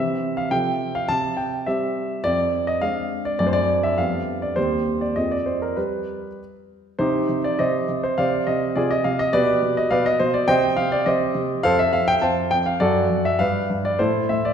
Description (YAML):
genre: classical-period piano sonatina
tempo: 103 BPM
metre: 2/4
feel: straight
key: C minor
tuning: A4 = 440 Hz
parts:
  - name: warm grand piano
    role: solo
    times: 0.0-14.5 s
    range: Eb2 to A5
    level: -19 LUFS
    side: equal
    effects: none
room: wet recital hall reverb, RT60 1.5 s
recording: heard from further back in the room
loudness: -19 LUFS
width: side -8 dB against mid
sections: 0.0-7.0 A section; 7.0-14.5 B section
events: none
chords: 0.0 C; 0.5 F/C; 1.1 C; 2.2 Dm7b5/F; 3.4 D7/F#; 4.0 G7/F; 4.6 Cm/Eb; 5.2 Fm; 5.8 N.C.; 7.0 Cm; 8.2 Dm7/C; 9.3 G/B; 10.5 Cm; 11.6 F; 12.8 D/F#; 13.4 G7; 14.0 Am